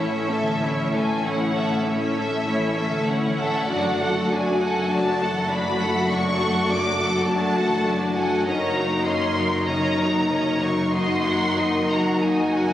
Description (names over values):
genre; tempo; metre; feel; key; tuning
classical, slow romantic movement for symphony orchestra; 45-52 BPM; 4/4; rubato; unclear; A4 = 440 Hz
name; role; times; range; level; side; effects
rich chamber violin section; melody; 0.0-12.7 s; E5 to D6; -27 LUFS; left 1 dB; none
rich chamber violin section; second line; 0.0-12.7 s; F#4 to F#5; -28 LUFS; equal; none
clear symphonic viola section; accompaniment; 0.0-12.7 s; Eb3 to F#4; -26 LUFS; equal; none
mellow French horn section; sustained chords; 0.0-12.7 s; A3 to Eb4; -27 LUFS; left 2 dB; none
concert harp; arpeggios; 0.0-12.7 s; F#2 to Eb5; -32 LUFS; left 3 dB; none
clear chamber cello section; bass; 0.0-12.7 s; F#2 to A2; -28 LUFS; right 1 dB; none
rich studio double bass section; bass; 0.0-12.7 s; F#1 to A1; -34 LUFS; right 2 dB; none
room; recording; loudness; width
wet scoring stage reverb, RT60 1.5 s; recorded on a phone in the room, studio reverb; -20 LUFS; side -12 dB against mid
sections
0.0-12.7 A section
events
none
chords
0.0 A; 3.7 D/F#; 8.5 Gb6; 10.9 Ebm/Gb